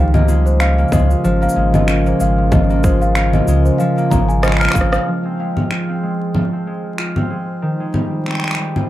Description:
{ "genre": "folktronica", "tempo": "94 BPM", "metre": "4/4", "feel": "swing 56% on 16ths", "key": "F minor", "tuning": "A4 = 440 Hz", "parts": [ { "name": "celesta", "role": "second line", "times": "0.0-5.1 s", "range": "F4 to F6", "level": "-20 LUFS", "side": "left 1 dB", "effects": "tape echo" }, { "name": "warbly tape-like pad", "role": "sustained chords", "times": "0.0-8.9 s", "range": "Db3 to C5", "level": "-23 LUFS", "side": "right 1 dB", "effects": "chorus, built-in reverb, vintage 12-bit sampler grit" }, { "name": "concert harp", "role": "arpeggios", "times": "0.0-8.9 s", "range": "Eb3 to F4", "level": "-20 LUFS", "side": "equal", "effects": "low-pass filter, tape echo" }, { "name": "warm sub bass", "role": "bass", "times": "0.0-5.0 s", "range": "Ab1 to Db2", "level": "-16 LUFS", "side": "equal", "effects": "none" }, { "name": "electronic congas, cabasa, finger snaps and rim click", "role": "drums", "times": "0.1-8.9 s", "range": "none", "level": "-19 LUFS", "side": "equal", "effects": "none" }, { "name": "electronic kick drum", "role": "drums", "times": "0.9-4.9 s", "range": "none", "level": "-17 LUFS", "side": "equal", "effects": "overdrive" } ], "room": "light reverb", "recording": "vinyl crackle", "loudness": "-14 LUFS", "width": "side -14 dB against mid", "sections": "0.0-5.1 A section; 5.1-8.9 B section", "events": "drum fill 4.4-5.1", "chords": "0.0 Db6; 5.1 Fm; 7.6 Abmaj7", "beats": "0.60 1.24 1.88 | 2.52 3.16 3.79 4.43 | 5.07 5.71 6.35 6.99 | 7.62 8.26" }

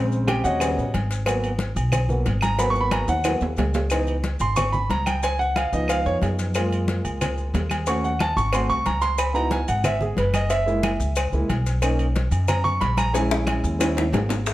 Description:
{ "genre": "Afro-Cuban jazz", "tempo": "182 BPM", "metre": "4/4", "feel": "straight", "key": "G# minor", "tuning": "A4 = 440 Hz", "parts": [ { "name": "warm grand piano", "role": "accompaniment", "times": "0.0-14.0 s", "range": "C#3 to C#6", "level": "-24 LUFS", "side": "right 1 dB", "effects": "none" }, { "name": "upright bass", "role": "bass", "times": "0.0-14.5 s", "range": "F#1 to F#2", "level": "-24 LUFS", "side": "equal", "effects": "none" }, { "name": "congas", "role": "percussion", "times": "0.1-14.5 s", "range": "none", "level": "-30 LUFS", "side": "left 2 dB", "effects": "none" }, { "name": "maracas", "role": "percussion", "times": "0.1-14.5 s", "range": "none", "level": "-39 LUFS", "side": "left 7 dB", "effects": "none" }, { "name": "agogo bells and timbales", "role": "percussion", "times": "0.3-14.5 s", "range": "none", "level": "-30 LUFS", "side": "right 2 dB", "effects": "none" }, { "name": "claves", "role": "percussion", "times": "0.3-14.0 s", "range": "none", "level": "-35 LUFS", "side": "left 1 dB", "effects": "none" }, { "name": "cowbell and bongos", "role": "percussion", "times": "0.3-14.5 s", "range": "none", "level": "-30 LUFS", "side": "left 3 dB", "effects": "none" } ], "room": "moderate large studio reverb, RT60 1.1 s", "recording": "dark, warm production", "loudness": "-20 LUFS", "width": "side -15 dB against mid", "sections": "0.0-3.9 A section; 3.9-14.5 A section", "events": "grand piano solo 0.0-14.5; drum fill 3.1-3.9, 13.2-14.5", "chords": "0.0 A#m7; 0.6 D#7alt; 1.3 G#m9; 3.9 C#m9; 5.2 C#7; 6.6 F#maj9; 7.9 D#m7b5; 8.5 G#7b9; 9.2 C#m11; 10.5 F#9; 11.8 Bmaj9; 13.2 A#m7b5; 13.8 D#7b9", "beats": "0.28 0.61 0.94 | 1.27 1.60 1.93 2.26 | 2.59 2.92 3.25 3.58 | 3.91 4.24 4.57 4.90 | 5.23 5.56 5.89 6.22 | 6.55 6.88 7.21 7.54 | 7.87 8.21 8.54 8.87 | 9.20 9.53 9.86 10.19 | 10.51 10.84 11.17 11.50 | 11.83 12.16 12.49 12.82 | 13.15 13.48 13.81 14.14 | 14.47" }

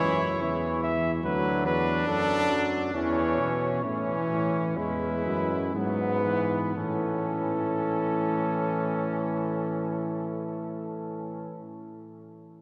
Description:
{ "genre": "classical, imitative canzona for brass ensemble", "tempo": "56-76 BPM", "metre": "4/4", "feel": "straight", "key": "A major", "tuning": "A4 = 440 Hz", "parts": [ { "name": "dark trumpet", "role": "melody", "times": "0.0-11.6 s", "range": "A4 to E5", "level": "-34 LUFS", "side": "equal", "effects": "none" }, { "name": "warm trumpet", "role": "second line", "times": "0.0-11.6 s", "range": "B3 to E4", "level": "-34 LUFS", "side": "equal", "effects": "none" }, { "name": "warm trombone", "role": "accompaniment", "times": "0.0-11.6 s", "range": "E3 to G#3", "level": "-34 LUFS", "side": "equal", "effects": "none" }, { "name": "mellow bass trombone", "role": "bass", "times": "0.0-11.6 s", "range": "D2 to B2", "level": "-34 LUFS", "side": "equal", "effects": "none" } ], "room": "wet cathedral reverb, RT60 4.7 s", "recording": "none", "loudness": "-28 LUFS", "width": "mono", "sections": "0.0-6.8 A section; 6.8-11.0 B section", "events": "slowing down 0.0-6.8", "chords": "0.0 C#m; 1.2 Bm/D; 3.0 A/E; 4.8 E; 6.8 A", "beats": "0.44 1.25 2.08 | 2.95 3.85 4.78 5.75 | 6.77 7.81 8.86 9.92" }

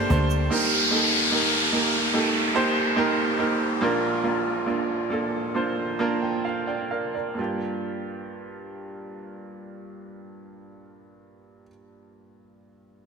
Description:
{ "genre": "pop ballad", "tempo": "63-74 BPM", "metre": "4/4", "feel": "straight", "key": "G minor", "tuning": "A4 = 440 Hz", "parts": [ { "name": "bright upright piano", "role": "accompaniment", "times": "0.0-13.1 s", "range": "Bb1 to A5", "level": "-25 LUFS", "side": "right 2 dB", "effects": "slapback echo" }, { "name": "warm symphonic string section", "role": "sustained chords", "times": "0.0-0.5 s", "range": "G5 to A5", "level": "-42 LUFS", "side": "equal", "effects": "none" }, { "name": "electric guitar at the edge of break-up", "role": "arpeggios", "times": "0.0-1.0 s", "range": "G3 to A4", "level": "-38 LUFS", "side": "left 7 dB", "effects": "none" }, { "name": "vintage muted fingered electric bass", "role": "bass", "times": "0.0-0.5 s", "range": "D2", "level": "-22 LUFS", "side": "equal", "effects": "none" }, { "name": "tube shaker", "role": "percussion", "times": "0.3-0.5 s", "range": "none", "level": "-50 LUFS", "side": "right 7 dB", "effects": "none" }, { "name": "downlifter", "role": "sound effects", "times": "0.5-7.4 s", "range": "none", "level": "-25 LUFS", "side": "equal", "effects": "none" } ], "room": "wet lush hall reverb, RT60 2.6 s", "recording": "big arena sound", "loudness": "-21 LUFS", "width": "side -5 dB against mid", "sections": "0.5-7.4 A section; 7.4-11.2 B section", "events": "slowing down 0.5-7.4; upright piano fill 5.6-7.4", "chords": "0.0 Gmadd9; 0.5 Eb; 3.8 Bb; 7.4 Gm7", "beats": "| 0.51 1.32 2.14 2.97 | 3.81 4.67 5.55 6.46 | 7.39 8.34 9.28 10.23" }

